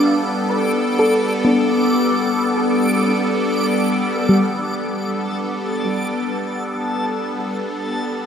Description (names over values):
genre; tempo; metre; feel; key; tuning
ambient; free time; none; none; G mixolydian; A4 = 439 Hz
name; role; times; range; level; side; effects
evolving wavetable pad; sustained chords; 0.0-8.3 s; G3 to A4; -19 LUFS; left 1 dB; phaser, built-in reverb
soft round pluck; arpeggios; 0.0-8.3 s; G3 to F5; -21 LUFS; equal; chorus, diffuse ambient delay
backwards swelling texture; texture; 0.0-8.3 s; A5 to D6; -27 LUFS; equal; built-in reverb
room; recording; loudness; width
wet huge ambient reverb, RT60 7.7 s; none; -17 LUFS; side -8 dB against mid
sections
0.0-4.9 A section; 4.9-8.3 B section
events
none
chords
0.0 Gadd9